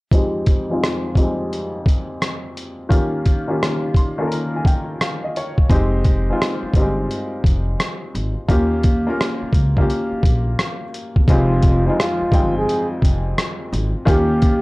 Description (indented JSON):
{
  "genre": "lo-fi hip hop",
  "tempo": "86 BPM",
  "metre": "4/4",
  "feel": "swing 65% on 16ths",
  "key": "F minor",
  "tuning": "A4 = 440 Hz",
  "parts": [
    { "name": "felt-muted upright piano", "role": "accompaniment", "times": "0.1-14.6 s", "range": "F2 to C6", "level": "-22 LUFS", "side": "left 1 dB", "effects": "cassette tape, low-pass filter" },
    { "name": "lo-fi sampler-style drum kit", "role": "drums", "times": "0.1-14.6 s", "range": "hi-hat, kick drum, rim click", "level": "-17 LUFS", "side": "equal", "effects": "none" },
    { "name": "upright bass", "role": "bass", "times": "5.7-14.6 s", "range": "F1 to E2", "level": "-20 LUFS", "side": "equal", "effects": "transformer saturation" },
    { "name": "breathy flugelhorn", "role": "melody", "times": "11.3-14.6 s", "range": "Eb4 to Ab4", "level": "-22 LUFS", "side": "equal", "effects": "tape echo" }
  ],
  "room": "little or no reverb",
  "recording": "dry, gritty hardware recording",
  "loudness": "-16 LUFS",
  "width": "side -23 dB against mid",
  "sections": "0.1-11.3 A section; 11.3-14.6 B section",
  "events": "filter sweep on felt piano 0.1-11.3; felt piano fill 3.6-5.7",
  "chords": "0.1 Fm9; 2.9 Eb9; 5.7 Fm9; 8.5 Eb9; 11.3 Fm9; 14.1 Eb9",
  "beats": "| 0.12 0.81 1.51 2.21 | 2.91 3.60 4.30 5.00 | 5.70 6.39 7.09 7.79 | 8.49 9.19 9.88 10.58 | 11.28 11.98 12.67 13.37 | 14.07"
}